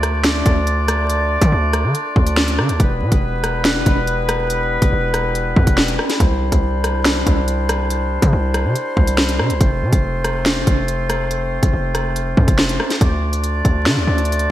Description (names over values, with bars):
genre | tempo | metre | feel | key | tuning
hip hop, drill | 141 BPM | 4/4 | half-time | unclear | A4 = 440 Hz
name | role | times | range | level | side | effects
warm woodwind section | sustained chords | 0.0-14.5 s | G3 to D5 | -22 LUFS | left 1 dB | none
distorted 808-style bass | bass | 0.0-14.5 s | E1 to D3 | -19 LUFS | equal | distortion
drill drum kit | drums | 0.0-14.5 s | finger snaps, hi-hat, kick drum, rim click, snare drum | -18 LUFS | equal | gated reverb
room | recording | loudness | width
light reverb, digital ambience | bright 1980s-style digital production, vinyl crackle | -15 LUFS | side -13 dB against mid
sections
0.0-13.0 A section; 13.0-14.5 B section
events
none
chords
0.0 Dm; 2.8 Em; 6.2 Cadd9; 9.6 F; 13.0 Dm